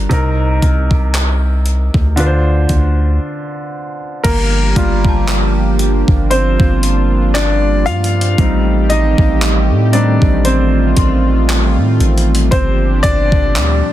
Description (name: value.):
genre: contemporary R&B.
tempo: 58 BPM.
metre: 4/4.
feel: swing 54% on 16ths.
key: G minor.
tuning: A4 = 440 Hz.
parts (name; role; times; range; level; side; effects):
clear grand piano; accompaniment; 0.0-13.9 s; C3 to F5; -17 LUFS; equal; none.
long sustained 808-style bass; bass; 0.0-13.8 s; G1 to A2; -14 LUFS; equal; none.
crisp 8-bit digital drum machine; drums; 0.1-13.8 s; crash cymbal, handclaps, hi-hat, kick drum; -16 LUFS; equal; overdrive.
warm analog pad; sustained chords; 4.2-13.9 s; Bb2 to G4; -19 LUFS; right 1 dB; chorus.
synth chime; texture; 4.8-12.5 s; F5 to C6; -30 LUFS; left 7 dB; ensemble chorus, phaser, digital delay.
room: little or no reverb.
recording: dense, heavily limited modern master.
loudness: -11 LUFS.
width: side -13 dB against mid.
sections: 0.0-4.2 A section; 4.2-13.9 B section.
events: break 3.2-4.2; grand piano solo 4.2-13.9.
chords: 0.1 Cm7; 2.2 Dm7; 4.2 Gm7; 8.4 Am7b5; 12.5 Gm7.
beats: | 0.11 1.14 2.18 3.21 | 4.25 5.28 6.32 7.35 | 8.38 9.42 10.45 11.49 | 12.52 13.56.